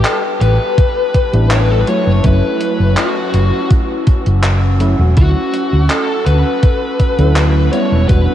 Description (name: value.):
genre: vaporwave.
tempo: 82 BPM.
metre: 4/4.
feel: straight.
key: unclear.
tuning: A4 = 439 Hz.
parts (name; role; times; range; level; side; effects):
bluesy overdriven lead guitar; melody; 0.0-8.3 s; F#4 to C#5; -19 LUFS; left 3 dB; distortion, analog delay.
warbly tape-like pad; sustained chords; 0.0-8.3 s; G3 to E6; -22 LUFS; left 1 dB; chorus, built-in reverb.
gated 80s digital drum machine; drums; 0.0-8.2 s; handclaps, hi-hat; -23 LUFS; equal; gated reverb, overdrive.
hollow-body short-scale fingered electric bass; bass; 0.4-8.3 s; E1 to D2; -12 LUFS; equal; tube saturation.
electronic kick drum; drums; 0.8-8.2 s; none; -12 LUFS; equal; overdrive.
mellow FM electric piano; accompaniment; 1.3-8.3 s; F#3 to F#4; -20 LUFS; equal; phaser, analog chorus.
room: moderate huge ambient reverb, RT60 8.5 s.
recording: dreamy mix soaked in reverb, cassette tape.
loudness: -11 LUFS.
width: side -11 dB against mid.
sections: 0.0-8.3 A section.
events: none.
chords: 0.0 A9sus4; 1.9 F#m7; 5.2 Dmaj9; 7.7 Em9.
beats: 0.05 0.78 1.51 | 2.24 2.97 3.71 4.44 | 5.17 5.90 6.63 7.37 | 8.10.